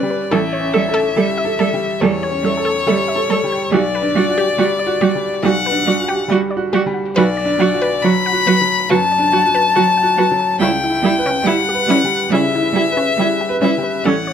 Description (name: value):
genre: neoclassical piano and strings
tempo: 70 BPM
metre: 4/4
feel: rubato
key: unclear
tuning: A4 = 440 Hz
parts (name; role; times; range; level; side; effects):
- rich violin; melody; 0.0-14.3 s; C#5 to B5; -17 LUFS; left 5 dB; none
- bright upright piano; accompaniment; 0.0-14.3 s; A1 to B4; -21 LUFS; right 1 dB; none
- resonant blip pluck; arpeggios; 0.1-14.3 s; C#4 to A5; -23 LUFS; left 3 dB; chorus, tape echo
- rich cello; second line; 0.3-14.1 s; F#3 to G3; -20 LUFS; right 6 dB; none
- rich viola; accompaniment; 0.3-14.1 s; C#4 to A4; -20 LUFS; right 3 dB; none
room: light reverb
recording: close, detailed microphones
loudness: -14 LUFS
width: side -8 dB against mid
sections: 0.0-14.3 A section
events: none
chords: 0.3 A7; 3.7 Gmaj7/B; 7.2 Bm7; 10.6 C#m7b5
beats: | 0.31 1.17 2.02 2.86 | 3.72 4.58 5.43 6.29 | 7.15 8.03 8.88 9.74 | 10.60 11.46 12.32 13.18 | 14.04